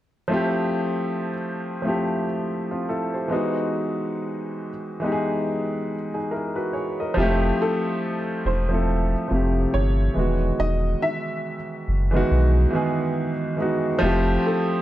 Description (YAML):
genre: lo-fi hip hop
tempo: 70 BPM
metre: 4/4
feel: swing 59% on 16ths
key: unclear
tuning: A4 = 442 Hz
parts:
  - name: clear upright piano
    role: accompaniment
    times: 0.3-14.8 s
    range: C3 to D#5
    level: -23 LUFS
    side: equal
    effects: cassette tape
  - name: warm sub bass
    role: bass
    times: 7.2-14.4 s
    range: E1 to B1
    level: -21 LUFS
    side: equal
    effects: none
  - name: dark upright piano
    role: melody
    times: 7.6-14.8 s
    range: A4 to E5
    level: -29 LUFS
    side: equal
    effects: none
room: moderate spring reverb, RT60 1.4 s, small room reverb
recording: dark, warm production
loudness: -21 LUFS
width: side -14 dB against mid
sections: 0.3-7.2 A section; 7.2-14.8 B section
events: none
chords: 0.3 Fmaj9; 3.3 Emaj9; 7.2 Fmaj9; 10.2 Emaj9; 14.0 Fmaj9